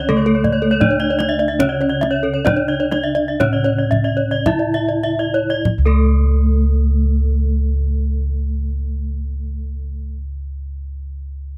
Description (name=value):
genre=Balinese gamelan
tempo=47-88 BPM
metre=4/4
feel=straight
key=unclear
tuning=A4 = 439 Hz
part: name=gamelan-type bronze metallophone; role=melody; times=0.0-10.2 s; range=A3 to E4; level=-24 LUFS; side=equal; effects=none
part: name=gamelan-type bronze metallophone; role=accompaniment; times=0.0-10.1 s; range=C#3 to A3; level=-28 LUFS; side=equal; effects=none
part: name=gamelan-type bronze metallophone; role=arpeggios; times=0.0-10.1 s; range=A4 to E5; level=-26 LUFS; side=equal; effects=none
part: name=gamelan-type bronze metallophone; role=arpeggios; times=0.1-10.1 s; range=A4 to E5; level=-24 LUFS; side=equal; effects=none
part: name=gamelan-type bossed gongs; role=bass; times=0.1-10.1 s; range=C#2 to D4+35c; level=-22 LUFS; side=equal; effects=none
part: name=kendang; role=percussion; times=0.4-6.3 s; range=none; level=-24 LUFS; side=equal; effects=none
room=little or no reverb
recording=close, detailed microphones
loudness=-18 LUFS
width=mono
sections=0.0-5.7 A section; 5.7-10.8 B section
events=slowing down 0.0-5.7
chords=none